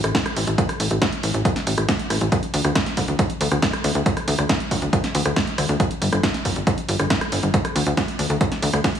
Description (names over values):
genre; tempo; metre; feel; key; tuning
uplifting trance; 138 BPM; 4/4; straight; unclear; A4 = 440 Hz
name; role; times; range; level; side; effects
tight sequencer bass; bass; 0.0-8.8 s; G1 to D2; -21 LUFS; equal; sidechain pumping
punchy analog drum machine; drums; 0.0-9.0 s; hi-hat, rim click, snare drum; -23 LUFS; right 1 dB; none
electronic kick drum; drums; 0.1-8.9 s; none; -22 LUFS; equal; none
room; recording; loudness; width
light reverb; heavily compressed radio sound, multiband compression, studio ambience; -19 LUFS; side -9 dB against mid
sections
0.0-9.0 A section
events
none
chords
none